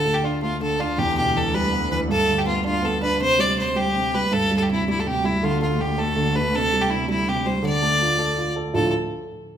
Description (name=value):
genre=celtic folk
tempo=108 BPM (dotted quarters)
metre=6/8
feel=straight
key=D dorian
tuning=A4 = 440 Hz
part: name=bright fiddle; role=melody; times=0.0-8.9 s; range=E4 to D5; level=-22 LUFS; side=equal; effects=none
part: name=dark upright piano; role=accompaniment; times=0.0-8.9 s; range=D2 to A4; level=-24 LUFS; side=right 1 dB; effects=none
part: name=muted cello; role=drone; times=0.0-8.8 s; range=D2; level=-30 LUFS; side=equal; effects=none
room=wet recital hall reverb, RT60 1.5 s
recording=recorded in a church or concert hall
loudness=-19 LUFS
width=side -9 dB against mid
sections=0.0-8.7 A section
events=none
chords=0.0 D5; 1.0 Em; 2.1 G; 3.2 C5; 5.4 D5; 6.5 C5; 7.6 Dm